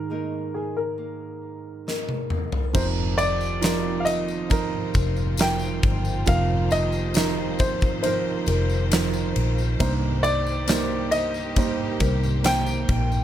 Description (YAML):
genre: pop ballad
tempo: 68 BPM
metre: 4/4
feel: straight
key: unclear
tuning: A4 = 440 Hz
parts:
  - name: warm baby grand piano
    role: melody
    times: 0.0-13.2 s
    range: Ab4 to G5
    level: -27 LUFS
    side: left 1 dB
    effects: none
  - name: felt-muted upright piano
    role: accompaniment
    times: 0.0-13.2 s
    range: G2 to C5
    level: -28 LUFS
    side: right 7 dB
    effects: none
  - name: nylon-string guitar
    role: arpeggios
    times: 0.0-13.2 s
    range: C3 to Bb4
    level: -34 LUFS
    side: left 4 dB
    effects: tape echo
  - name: huge arena drum kit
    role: drums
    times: 1.9-13.1 s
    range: crash cymbal, kick drum, ride cymbal, snare drum, toms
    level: -26 LUFS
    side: left 1 dB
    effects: none
  - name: warm studio string section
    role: sustained chords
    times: 2.7-13.2 s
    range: Eb3 to C5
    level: -35 LUFS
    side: left 3 dB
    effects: none
  - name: vintage muted fingered electric bass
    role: bass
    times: 2.7-13.2 s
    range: F1 to C2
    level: -26 LUFS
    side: left 1 dB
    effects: none
  - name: tambourine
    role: percussion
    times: 2.7-13.2 s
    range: none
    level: -38 LUFS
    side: left 5 dB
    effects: none
room: little or no reverb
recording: none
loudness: -21 LUFS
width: side -11 dB against mid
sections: 0.0-2.7 A section; 2.7-13.2 B section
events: drum fill 1.9-2.7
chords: 0.0 Absus2; 2.7 F7sus4; 9.8 Cm7